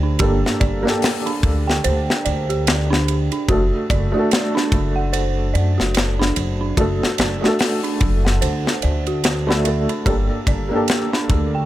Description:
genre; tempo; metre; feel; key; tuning
trip hop; 73 BPM; 4/4; swing 59% on 16ths; G harmonic minor; A4 = 441 Hz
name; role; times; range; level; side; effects
felt-muted upright piano; accompaniment; 0.0-11.7 s; A3 to A4; -23 LUFS; equal; tremolo, tape echo
dark detuned synth bell; arpeggios; 0.0-11.7 s; D4 to G5; -24 LUFS; right 3 dB; chorus, tape echo
upright bass; bass; 0.0-11.7 s; F#1 to F#2; -20 LUFS; equal; none
tight metal drum kit; drums; 0.2-11.5 s; hi-hat, kick drum, ride cymbal, snare drum; -21 LUFS; left 1 dB; none
room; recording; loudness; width
light reverb, small room ambience; none; -16 LUFS; side -14 dB against mid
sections
0.0-11.7 A section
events
none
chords
0.0 Gmadd9; 3.5 D/F#; 10.1 Gmadd9

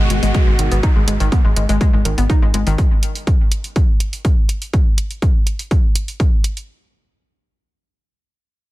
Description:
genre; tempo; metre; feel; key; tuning
melodic techno; 123 BPM; 4/4; straight; G# minor; A4 = 440 Hz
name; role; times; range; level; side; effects
analog pluck; arpeggios; 0.0-2.7 s; D#3 to D#4; -22 LUFS; left 3 dB; chorus, cassette tape, sidechain pumping, ping-pong delay
analog synth brass; stabs; 0.0-0.8 s; B2 to F#4; -25 LUFS; right 2 dB; chorus, cassette tape, sidechain pumping, ping-pong delay
tight sequencer bass; bass; 0.0-2.8 s; G#1; -18 LUFS; equal; sidechain pumping
downlifter; sound effects; 0.0-2.8 s; none; -30 LUFS; equal; none
electronic hi-hat; drums; 0.1-6.7 s; none; -25 LUFS; right 2 dB; sidechain pumping on hats, sidechain pumping on toms, sidechain pumping on cymbals
electronic kick drum; drums; 0.3-6.3 s; none; -15 LUFS; equal; none
room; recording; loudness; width
digital ambience; dense, heavily limited modern master; -14 LUFS; side -18 dB against mid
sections
0.0-6.7 A section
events
none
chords
0.0 G#m7

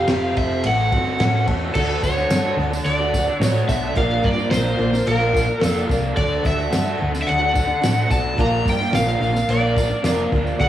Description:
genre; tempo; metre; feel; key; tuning
folk rock and heartland rock; 109 BPM; 4/4; straight; unclear; A4 = 438 Hz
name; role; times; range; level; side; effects
overdriven slide guitar; melody; 0.0-10.7 s; A4 to Bb5; -23 LUFS; equal; none
picked twelve-string acoustic guitar; accompaniment; 0.0-10.7 s; A2 to Bb4; -28 LUFS; left 3 dB; cassette tape
tonewheel organ; sustained chords; 0.0-10.7 s; D4 to C#6; -32 LUFS; right 1 dB; slow rotary speaker, overdrive, chorus vibrato, cassette tape
raw garage guitar; riff; 0.0-10.7 s; A2 to G4; -25 LUFS; equal; overdrive, cassette tape
hollow-body short-scale fingered electric bass; bass; 0.0-10.7 s; F1 to A2; -23 LUFS; equal; none
damped 70s drum kit; drums; 0.1-10.7 s; crash cymbal, kick drum, ride cymbal, snare drum; -25 LUFS; equal; cassette tape
reed electric piano; accompaniment; 1.7-10.7 s; D4 to D5; -33 LUFS; right 5 dB; none
tambourine; percussion; 2.0-10.5 s; none; -37 LUFS; right 3 dB; none
room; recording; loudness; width
light reverb, studio ambience; home recording on cassette, studio reverb; -17 LUFS; side -12 dB against mid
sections
0.0-1.8 A section; 1.8-10.7 B section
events
none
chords
0.0 Fadd9; 0.7 A6; 1.8 D; 4.0 Bb; 6.2 D; 8.4 Bb

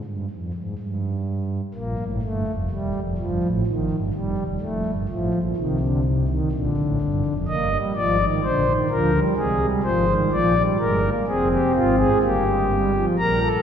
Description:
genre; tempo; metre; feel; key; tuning
classical, baroque-style 4-part fugue for pipe organ; 63 BPM; 3/4; straight; Eb major; A4 = 439 Hz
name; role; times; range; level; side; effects
pipe organ, principal; solo; 0.0-13.6 s; Eb1 to Bb5; -20 LUFS; equal; none
room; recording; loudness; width
wet church reverb, RT60 3.5 s; heard from further back in the room; -20 LUFS; side -8 dB against mid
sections
0.0-13.6 A section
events
none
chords
0.0 N.C.; 1.7 Bb5; 3.7 Eb; 4.6 F7; 6.5 Bb; 7.5 Eb/G; 9.4 Ab/C; 10.3 Bb7; 12.2 Gm7

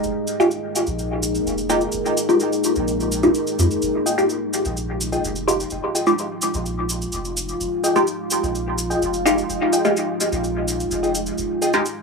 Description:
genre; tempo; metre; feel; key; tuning
dub techno; 127 BPM; 4/4; straight; F minor; A4 = 440 Hz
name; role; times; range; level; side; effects
deep dark ambient pad; sustained chords; 0.0-12.0 s; Ab3 to Bb4; -24 LUFS; equal; chorus, built-in reverb, vintage 12-bit sampler grit
soft dub sub bass; bass; 0.0-11.5 s; F1 to F2; -28 LUFS; equal; none
cabasa; percussion; 0.0-12.0 s; none; -28 LUFS; right 1 dB; none
filtered dub chord stab; stabs; 0.4-11.8 s; Ab3 to G4; -21 LUFS; left 1 dB; phaser, dub echo
wavetable chord stab; riff; 4.1-11.7 s; F4 to G5; -26 LUFS; left 2 dB; dub echo
room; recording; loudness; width
moderate spring reverb, RT60 1.3 s; dry, gritty hardware recording; -19 LUFS; side -4 dB against mid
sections
0.0-12.0 A section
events
filter sweep on synth stab 0.0-12.0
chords
0.0 Fm9

